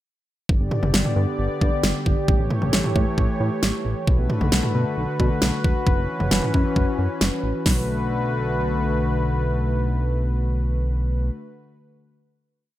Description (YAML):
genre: synth-pop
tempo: 134 BPM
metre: 4/4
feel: straight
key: B minor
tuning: A4 = 440 Hz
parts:
  - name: warm analog pad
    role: sustained chords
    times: 0.5-11.3 s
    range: D3 to D5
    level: -25 LUFS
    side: left 1 dB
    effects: chorus
  - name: chorused synth bass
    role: bass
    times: 0.5-11.3 s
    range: E1 to B2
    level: -24 LUFS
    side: equal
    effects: none
  - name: pop drum kit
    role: drums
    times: 0.5-7.8 s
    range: hi-hat, kick drum, snare drum, toms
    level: -21 LUFS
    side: equal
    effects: none
room: light reverb, digital ambience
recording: bright 1980s-style digital production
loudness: -20 LUFS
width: side -14 dB against mid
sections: 0.5-7.7 verse; 7.7-11.2 final chord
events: none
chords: 0.5 G; 2.3 A7; 4.1 Bm7; 5.9 F#7sus4; 7.7 Bm7